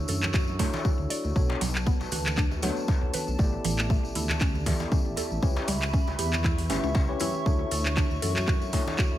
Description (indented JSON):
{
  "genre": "afro house",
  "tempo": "118 BPM",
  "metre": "4/4",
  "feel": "swing 56% on 16ths",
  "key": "unclear",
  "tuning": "A4 = 440 Hz",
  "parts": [
    { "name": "dark analog pad", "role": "sustained chords", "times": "0.0-9.2 s", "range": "D4 to E6", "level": "-36 LUFS", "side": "right 1 dB", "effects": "lush chorus, sidechain pumping" },
    { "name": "tine electric piano", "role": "stabs", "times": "0.0-9.2 s", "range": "B3 to E5", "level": "-34 LUFS", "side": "left 3 dB", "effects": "sidechain pumping, ping-pong delay" },
    { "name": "dark detuned saw bass", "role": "bass", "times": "0.0-9.2 s", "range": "G1 to F#2", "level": "-31 LUFS", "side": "equal", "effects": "sidechain pumping" },
    { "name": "mallet-like synth pluck", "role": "arpeggios", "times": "0.1-9.1 s", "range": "E3 to D5", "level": "-35 LUFS", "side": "right 1 dB", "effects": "chorus, sidechain pumping, ping-pong delay" },
    { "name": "afro-pop drum kit", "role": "drums", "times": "0.1-9.1 s", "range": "handclaps, hi-hat", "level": "-32 LUFS", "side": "equal", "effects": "overdrive" },
    { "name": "congas", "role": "percussion", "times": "0.1-9.0 s", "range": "none", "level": "-39 LUFS", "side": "right 4 dB", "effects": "none" },
    { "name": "tambourine", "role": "percussion", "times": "0.1-9.1 s", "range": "none", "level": "-40 LUFS", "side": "left 4 dB", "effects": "none" },
    { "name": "electronic kick drum", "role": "drums", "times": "0.3-9.1 s", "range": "none", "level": "-26 LUFS", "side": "equal", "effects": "overdrive" },
    { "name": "djembe", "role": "percussion", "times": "0.3-9.0 s", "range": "none", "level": "-39 LUFS", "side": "left 3 dB", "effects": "none" }
  ],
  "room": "digital ambience",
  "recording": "none",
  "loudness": "-24 LUFS",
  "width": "side -13 dB against mid",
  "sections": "0.0-9.2 A section",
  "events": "none",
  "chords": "0.0 Dmaj9; 1.4 Bm7; 3.4 A7sus4; 5.4 C#m7b5; 7.5 Dmaj9"
}